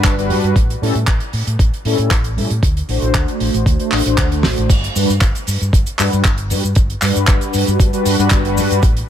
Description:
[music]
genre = nu-disco, nu disco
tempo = 116 BPM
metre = 4/4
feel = straight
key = G major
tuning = A4 = 441 Hz
[part]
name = mellow synth brass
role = accompaniment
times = 0.0-8.8 s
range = G3 to C5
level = -19 LUFS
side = left 1 dB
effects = chorus, dub echo
[part]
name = fingered electric bass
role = bass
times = 0.0-9.0 s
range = G1 to A2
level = -19 LUFS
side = equal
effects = none
[part]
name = damped 70s drum kit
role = drums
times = 0.0-9.1 s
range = cabasa, crash cymbal, handclaps, hi-hat, snare drum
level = -21 LUFS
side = right 1 dB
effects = none
[part]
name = electronic kick drum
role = drums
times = 0.0-8.9 s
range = none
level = -14 LUFS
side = equal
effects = none
[sound]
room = little or no reverb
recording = none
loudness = -13 LUFS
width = side -10 dB against mid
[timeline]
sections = 0.0-4.7 A section; 4.7-9.1 B section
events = drum fill 4.4; drop 4.7-9.1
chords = 0.0 Gmaj7; 0.6 A7; 2.6 D7; 4.7 Gmaj7

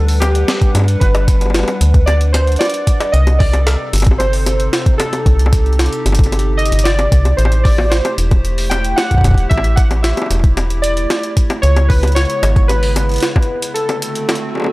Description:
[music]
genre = IDM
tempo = 113 BPM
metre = 4/4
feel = straight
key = unclear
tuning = A4 = 440 Hz
[part]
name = warbly lo-fi synth keys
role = melody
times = 0.0-14.7 s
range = G4 to G5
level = -20 LUFS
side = right 1 dB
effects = chorus, tape echo
[part]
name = warbly tape-like pad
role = sustained chords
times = 0.0-14.7 s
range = C3 to F#5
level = -24 LUFS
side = left 1 dB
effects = chorus, built-in reverb
[part]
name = metallic FM bass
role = bass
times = 0.0-13.2 s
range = E1 to G2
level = -14 LUFS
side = equal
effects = none
[part]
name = jungle sampler-style drum kit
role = drums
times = 0.1-14.7 s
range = bongos, hi-hat, snare drum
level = -20 LUFS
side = left 1 dB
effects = overdrive, studio reverb
[part]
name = electronic kick drum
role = drums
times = 0.6-13.5 s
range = none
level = -12 LUFS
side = equal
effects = overdrive, studio reverb
[sound]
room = little or no reverb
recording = dry, gritty hardware recording, transformer saturation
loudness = -11 LUFS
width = side -20 dB against mid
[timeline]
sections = 0.0-14.7 A section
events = break 13.8-14.7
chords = 0.0 Gmaj7; 3.1 Cm6; 7.4 Am7; 11.6 C#m7; 13.8 D7

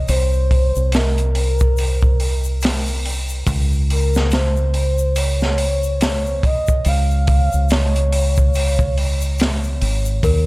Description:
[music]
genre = trip hop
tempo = 71 BPM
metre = 4/4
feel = swing 59% on 16ths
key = unclear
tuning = A4 = 440 Hz
[part]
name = pure breathy sine lead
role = melody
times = 0.0-9.8 s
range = Bb4 to F5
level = -24 LUFS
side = equal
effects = chorus, tape echo
[part]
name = deep dub fingered electric bass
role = bass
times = 0.1-10.5 s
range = Ab1 to Eb2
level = -17 LUFS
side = equal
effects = none
[part]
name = crunchy breakbeat drum kit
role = drums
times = 0.1-10.5 s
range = hi-hat, kick drum, snare drum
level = -20 LUFS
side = equal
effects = none
[part]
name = egg shaker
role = percussion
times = 0.1-10.4 s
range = none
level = -35 LUFS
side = left 10 dB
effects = none
[part]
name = celesta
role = arpeggios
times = 10.2-10.5 s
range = Bb4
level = -20 LUFS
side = left 3 dB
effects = none
[sound]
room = studio reverb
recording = dark, warm production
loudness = -15 LUFS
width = side -21 dB against mid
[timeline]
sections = 0.0-10.5 A section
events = none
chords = 0.1 Bbsus2/C; 3.5 Bbmadd9/Db; 6.9 Db

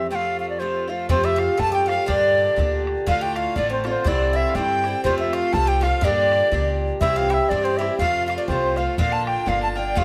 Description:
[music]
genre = celtic folk, Celtic polka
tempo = 122 BPM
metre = 2/4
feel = swing 58% on 8ths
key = F major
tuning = A4 = 443 Hz
[part]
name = bright reedy wooden flute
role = melody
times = 0.0-10.0 s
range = C5 to A5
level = -24 LUFS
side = equal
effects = plate reverb
[part]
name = Irish bouzouki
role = accompaniment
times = 0.0-10.0 s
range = G2 to G4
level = -27 LUFS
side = equal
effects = none
[part]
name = muted cello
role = drone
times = 0.0-1.2 s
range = F2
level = -41 LUFS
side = equal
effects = none
[part]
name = Irish bouzouki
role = second line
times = 1.1-9.0 s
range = C4 to A4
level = -35 LUFS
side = equal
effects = none
[part]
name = rich fiddle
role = second line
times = 1.1-10.0 s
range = C5 to A5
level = -35 LUFS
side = equal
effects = none
[part]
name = upright bass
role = bass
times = 1.1-10.0 s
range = F1 to G2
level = -30 LUFS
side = equal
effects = none
[part]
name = bodhran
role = percussion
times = 1.1-10.0 s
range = none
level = -30 LUFS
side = equal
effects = none
[sound]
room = moderate studio reverb, RT60 0.9 s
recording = none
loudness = -21 LUFS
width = mono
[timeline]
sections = 0.0-1.1 A section; 1.1-9.0 A section; 9.0-10.0 B section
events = none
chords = 0.1 F; 1.1 Fadd9; 2.1 Gm; 3.1 Dm; 4.1 Cadd9; 5.0 F; 6.0 Gm; 7.0 C; 8.0 F; 9.0 Bb

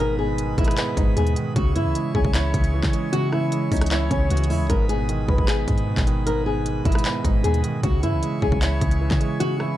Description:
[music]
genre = hip hop, trap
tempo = 153 BPM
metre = 4/4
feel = half-time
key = G# minor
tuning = A4 = 440 Hz
[part]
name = flamenco guitar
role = melody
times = 0.0-9.8 s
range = C#4 to B4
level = -26 LUFS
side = left 2 dB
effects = low-pass filter, tape echo
[part]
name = dark baby grand piano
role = accompaniment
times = 0.0-9.8 s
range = G#2 to C#5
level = -25 LUFS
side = right 2 dB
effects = low-pass filter
[part]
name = pipe organ, principal chorus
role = sustained chords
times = 0.0-9.8 s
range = G#4 to C#6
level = -35 LUFS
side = equal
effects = none
[part]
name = clean 808-style bass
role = bass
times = 0.0-9.8 s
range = G#1 to C#3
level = -24 LUFS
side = equal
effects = none
[part]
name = trap drum kit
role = drums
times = 0.4-9.7 s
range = handclaps, hi-hat, kick drum, rim click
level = -23 LUFS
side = equal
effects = none
[sound]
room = studio reverb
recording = dark, warm production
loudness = -19 LUFS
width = side -14 dB against mid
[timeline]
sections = 0.0-9.8 A section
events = none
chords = 0.0 G#m; 1.6 C#m; 4.7 G#m; 7.8 C#m

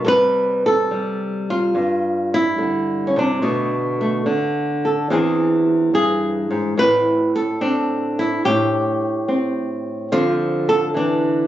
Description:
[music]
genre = solo jazz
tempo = 72 BPM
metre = 4/4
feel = swing 69% on 8ths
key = C major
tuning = A4 = 440 Hz
[part]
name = flamenco guitar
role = solo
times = 0.0-11.5 s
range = E2 to B4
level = -17 LUFS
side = equal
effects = none
[sound]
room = light reverb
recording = recorded on a phone in the room, studio ambience, compression, nothing above 7.8 kHz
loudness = -17 LUFS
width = side -12 dB against mid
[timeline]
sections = 0.1-11.5 A section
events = none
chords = 0.1 C69; 3.4 Bm7; 5.1 E7alt; 6.8 Am7; 10.1 Dm7

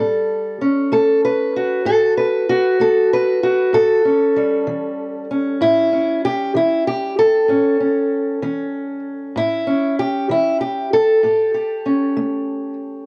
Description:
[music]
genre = acoustic country blues, solo or duo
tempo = 64 BPM (dotted quarters)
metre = 12/8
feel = straight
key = A mixolydian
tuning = A4 = 441 Hz
[part]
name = fingerpicked steel-string acoustic guitar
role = solo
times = 0.0-13.1 s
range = A2 to B4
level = -18 LUFS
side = equal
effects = cassette tape
[sound]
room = moderate spring reverb, RT60 2.4 s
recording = home recording on cassette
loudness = -18 LUFS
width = mono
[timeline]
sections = 0.0-13.1 A section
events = none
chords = 0.0 A7

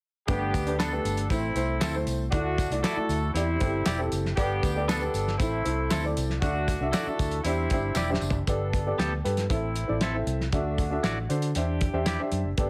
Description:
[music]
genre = uptempo 1960s-style soul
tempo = 117 BPM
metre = 4/4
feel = straight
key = G major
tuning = A4 = 440 Hz
[part]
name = mellow horn section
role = second line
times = 0.3-12.7 s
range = G3 to A4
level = -35 LUFS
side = equal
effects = none
[part]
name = warm upright piano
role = accompaniment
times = 0.3-12.7 s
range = A3 to E5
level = -33 LUFS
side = equal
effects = plate reverb
[part]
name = vintage muted fingered electric bass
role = bass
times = 0.3-12.7 s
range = E1 to D3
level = -32 LUFS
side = equal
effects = none
[part]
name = cloth-damped thuddy drum kit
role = drums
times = 0.3-12.7 s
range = hi-hat, kick drum, snare drum, toms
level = -32 LUFS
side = equal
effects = none
[part]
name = tambourine and handclaps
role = percussion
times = 0.3-8.3 s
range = none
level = -43 LUFS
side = equal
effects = none
[part]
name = clean electric guitar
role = stabs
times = 0.8-12.2 s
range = B3 to D5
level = -36 LUFS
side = equal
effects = plate reverb
[sound]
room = light reverb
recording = heavily compressed radio sound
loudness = -27 LUFS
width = mono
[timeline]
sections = 0.3-8.5 A section; 8.5-12.7 B section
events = drum fill 8.0-8.5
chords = 0.3 Gadd9; 1.3 Am; 2.3 Dadd9; 3.3 Cadd9; 4.4 Gadd9; 5.4 Am; 6.4 Dadd9; 7.4 Cadd9; 8.5 Gadd9; 9.5 Am; 10.5 Dadd9; 11.6 Cadd9/E

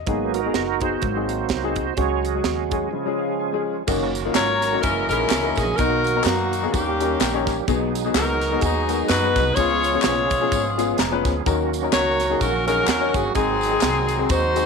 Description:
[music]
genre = uptempo gospel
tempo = 127 BPM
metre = 4/4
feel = swing 56% on 8ths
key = unclear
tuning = A4 = 440 Hz
[part]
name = warm upright piano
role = accompaniment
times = 0.0-14.7 s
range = G#2 to A#5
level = -26 LUFS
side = left 16 dB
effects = none
[part]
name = bright tonewheel organ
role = sustained chords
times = 0.1-14.7 s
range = B2 to D#5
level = -26 LUFS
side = right 15 dB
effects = fast rotary speaker, overdrive, chorus vibrato
[part]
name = upright bass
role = bass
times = 0.1-14.7 s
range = E#1 to F#2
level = -28 LUFS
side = equal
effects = none
[part]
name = crisp fusion drum kit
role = drums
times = 0.1-14.7 s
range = crash cymbal, hi-hat, kick drum, snare drum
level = -26 LUFS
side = right 4 dB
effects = none
[part]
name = tambourine and handclaps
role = percussion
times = 3.9-14.7 s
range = none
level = -31 LUFS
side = left 6 dB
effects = none
[part]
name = clear saxophone section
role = melody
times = 4.4-14.7 s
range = A#3 to C#5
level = -21 LUFS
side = left 1 dB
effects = none
[sound]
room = light reverb, studio reverb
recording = 1960s-style stereo with parts hard left and right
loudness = -19 LUFS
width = side -5 dB against mid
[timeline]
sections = 0.0-3.9 A section; 3.9-14.7 B section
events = tonewheel organ solo 0.0-3.9; break 2.9-3.9; upright piano fill 2.9-3.9, 10.5-11.5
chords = 0.1 G#m7; 1.0 G#7; 2.0 C#sus4; 2.9 C#; 3.9 F#6; 4.8 F#13; 5.8 Bmaj7; 6.7 D#7; 7.7 G#m7/B; 9.6 C#7; 11.5 D#m7; 13.4 G#7

